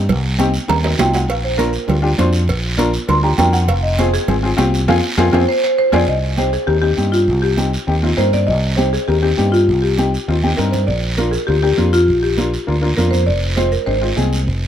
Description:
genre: latin, cumbia.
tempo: 200 BPM.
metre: 4/4.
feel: straight.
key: C minor.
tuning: A4 = 441 Hz.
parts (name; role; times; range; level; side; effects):
fingered electric bass; bass; 0.0-14.7 s; F1 to G2; -17 LUFS; equal; none.
congas; percussion; 0.1-14.6 s; none; -23 LUFS; right 5 dB; none.
cowbell and timbales; percussion; 0.1-6.0 s; none; -25 LUFS; right 5 dB; none.
guiro; percussion; 0.1-14.7 s; none; -28 LUFS; right 3 dB; none.
clear upright piano; accompaniment; 0.4-14.4 s; Ab3 to C5; -21 LUFS; left 3 dB; none.
buzzing marimba with medium hard mallets; melody; 0.7-14.7 s; F4 to C6; -18 LUFS; equal; slapback echo.
room: light reverb.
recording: none.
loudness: -14 LUFS.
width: side -10 dB against mid.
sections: 0.0-6.1 A section; 6.1-14.7 B section.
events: marimba solo 0.0-6.1; drum fill 0.7-1.3, 5.3-6.1, 10.4-10.9; band accent 4.9-6.1.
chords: 0.0 Cm; 1.3 Bb; 3.7 Fm; 6.1 Cm; 10.9 Bb; 13.3 Fm.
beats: | 0.09 0.39 0.69 0.99 | 1.29 1.59 1.89 2.19 | 2.49 2.79 3.09 3.39 | 3.69 3.99 4.29 4.58 | 4.88 5.18 5.48 5.78 | 6.08 6.38 6.68 6.98 | 7.28 7.58 7.88 8.18 | 8.48 8.78 9.08 9.38 | 9.68 9.98 10.28 10.58 | 10.88 11.18 11.48 11.78 | 12.08 12.38 12.68 12.98 | 13.28 13.58 13.88 14.18 | 14.48.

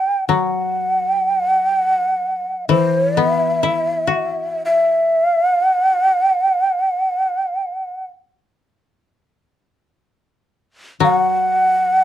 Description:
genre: japanese traditional, Japanese chamber music.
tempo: free time.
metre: none.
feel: none.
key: unclear.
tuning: A4 = 440 Hz.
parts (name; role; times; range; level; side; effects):
breathy mellow shakuhachi; melody; 0.0-12.0 s; E5 to G5; -16 LUFS; right 1 dB; none.
koto; accompaniment; 0.3-12.0 s; E3 to F#4; -20 LUFS; left 6 dB; none.
room: light reverb.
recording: dark, warm production.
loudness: -15 LUFS.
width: side -11 dB against mid.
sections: 0.0-12.0 A section.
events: none.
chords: none.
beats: free time.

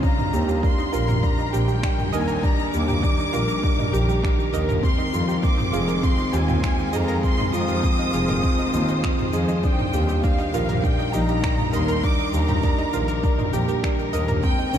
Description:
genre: piano and strings electronica.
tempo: 100 BPM.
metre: 4/4.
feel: straight.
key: Eb major.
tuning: A4 = 440 Hz.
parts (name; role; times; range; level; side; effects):
rich studio violin section; melody; 0.0-14.8 s; F5 to Eb6; -29 LUFS; equal; ping-pong delay.
rich studio string section; sustained chords; 0.0-14.8 s; Eb3 to C5; -31 LUFS; left 2 dB; sidechain pumping.
felt-muted upright piano; riff; 0.0-14.8 s; C4 to Bb4; -26 LUFS; right 1 dB; ping-pong delay.
deep house drum kit; drums; 0.0-14.8 s; finger snaps, shaker, toms; -30 LUFS; equal; overdrive.
electronic kick drum; drums; 0.0-14.6 s; none; -22 LUFS; equal; overdrive.
analog pluck; arpeggios; 0.2-14.7 s; Eb3 to Eb5; -32 LUFS; right 3 dB; chorus, sidechain pumping, ping-pong delay.
clear symphonic double bass section; bass; 0.3-14.8 s; F1 to F2; -25 LUFS; equal; sidechain pumping.
room: moderate huge ambient reverb, RT60 7.5 s.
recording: dreamy mix soaked in reverb.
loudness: -19 LUFS.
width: side -9 dB against mid.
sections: 0.0-14.8 A section.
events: none.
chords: 0.0 Ebmaj7; 4.8 Fm7; 9.6 Ebmaj7.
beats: | 0.04 0.64 1.24 1.83 | 2.44 3.04 3.63 4.24 | 4.83 5.43 6.04 6.63 | 7.24 7.83 8.44 9.04 | 9.63 10.23 10.84 11.44 | 12.04 12.63 13.23 13.84 | 14.44.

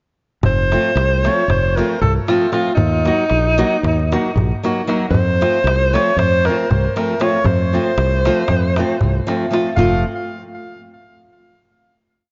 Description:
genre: balkan folk, Balkan wedding band.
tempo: 232 BPM (eighths).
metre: 9/8.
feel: straight.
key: F phrygian dominant.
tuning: A4 = 444 Hz.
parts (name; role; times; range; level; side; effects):
fingered electric bass; bass; 0.4-10.0 s; F1 to F2; -20 LUFS; equal; none.
darbuka; percussion; 0.4-10.0 s; none; -24 LUFS; equal; none.
warm alto saxophone; melody; 0.5-10.0 s; Eb4 to F5; -21 LUFS; equal; delay.
nylon-string guitar; accompaniment; 0.7-10.0 s; F3 to Gb4; -23 LUFS; equal; none.
room: moderate lush hall reverb, RT60 2.1 s.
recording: dreamy mix soaked in reverb, nothing above 7.5 kHz.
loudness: -17 LUFS.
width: mono.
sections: 0.4-9.8 A section; 9.8-12.1 final chord.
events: none.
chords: 0.4 F; 2.8 Ebm; 5.1 F.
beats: | 0.44 0.70 0.96 1.22 1.48 1.74 2.00 2.26 2.52 | 2.77 3.04 3.29 3.55 3.81 4.07 4.33 4.59 4.85 | 5.11 5.37 5.63 5.89 6.15 6.41 6.67 6.93 7.19 | 7.45 7.71 7.97 8.22 8.48 8.74 9.00 9.26 9.52 | 9.78 10.03.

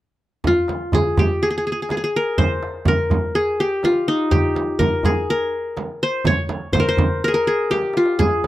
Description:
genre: Arabic maqam ensemble.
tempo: 124 BPM.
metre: 4/4.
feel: straight.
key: unclear.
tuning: A4 = 440 Hz.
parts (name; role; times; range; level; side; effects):
darbuka; percussion; 0.4-8.5 s; none; -24 LUFS; equal; none.
frame drum; percussion; 0.4-8.5 s; none; -22 LUFS; right 3 dB; none.
qanun; melody; 0.5-8.5 s; Eb4 to Db5; -19 LUFS; left 1 dB; none.
room: light reverb.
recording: dry, close 1970s-style studio recording.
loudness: -17 LUFS.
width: side -15 dB against mid.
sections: 0.4-8.5 A section.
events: drum fill 7.7-8.2.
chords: none.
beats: | 0.43 0.92 1.40 1.89 | 2.37 2.86 3.34 3.83 | 4.31 4.79 5.28 5.76 | 6.25 6.73 7.22 7.70 | 8.19.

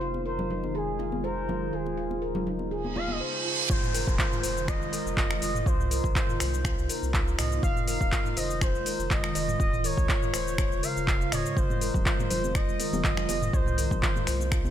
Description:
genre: afro house.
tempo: 122 BPM.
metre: 4/4.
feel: swing 54% on 16ths.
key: F minor.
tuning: A4 = 436 Hz.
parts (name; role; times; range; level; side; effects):
expressive portamento lead; melody; 0.0-14.5 s; Ab4 to F5; -34 LUFS; right 1 dB; lush chorus, digital delay.
ethereal airy pad; sustained chords; 0.0-14.7 s; C3 to F4; -36 LUFS; left 1 dB; ensemble chorus, built-in reverb, sidechain pumping.
handpan; arpeggios; 0.0-14.6 s; Eb4 to Eb5; -34 LUFS; equal; sidechain pumping, digital delay.
warm sub bass; bass; 0.0-14.7 s; Eb1 to Db2; -33 LUFS; equal; sidechain pumping.
congas; percussion; 0.1-3.2, 11.7-14.7 s; none; -36 LUFS; left 2 dB; none.
reverse cymbal and downlifter; sound effects; 2.9-7.6 s; none; -34 LUFS; right 3 dB; none.
afro-pop drum kit; drums; 3.7-14.7 s; cabasa, finger snaps, handclaps, hi-hat, toms; -31 LUFS; equal; none.
electronic kick drum; drums; 3.7-14.6 s; none; -27 LUFS; equal; none.
room: little or no reverb.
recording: none.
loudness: -25 LUFS.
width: side -10 dB against mid.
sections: 0.0-3.7 A section; 3.7-14.7 B section.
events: reverse cymbal 2.9-3.7; drop 3.7-14.7.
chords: 0.0 Fm7; 1.7 Eb9sus4; 3.7 Fm7; 5.7 Cm7; 7.6 Fm7; 9.6 Eb9sus4; 11.6 Fm7; 13.5 Cm7.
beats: 0.26 0.75 1.24 | 1.73 2.22 2.71 3.21 | 3.70 4.19 4.68 5.17 | 5.67 6.16 6.65 7.14 | 7.63 8.12 8.62 9.11 | 9.60 10.09 10.58 11.07 | 11.57 12.06 12.55 13.04 | 13.53 14.03 14.52.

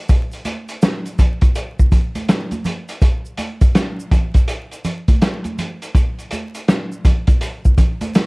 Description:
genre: hip hop.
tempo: 82 BPM.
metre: 4/4.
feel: swing 64% on 16ths.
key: none.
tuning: none.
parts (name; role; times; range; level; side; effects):
vintage drum kit; drums; 0.1-8.3 s; hi-hat, kick drum, snare drum; -15 LUFS; equal; none.
tube shaker and congas; percussion; 0.1-8.3 s; none; -27 LUFS; right 2 dB; none.
room: light reverb.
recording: dark, warm production, vinyl crackle.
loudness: -15 LUFS.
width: side -28 dB against mid.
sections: 0.0-8.3 A section.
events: none.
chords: none.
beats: | 0.10 0.83 1.56 2.29 | 3.02 3.75 4.49 5.22 | 5.95 6.68 7.41 8.14.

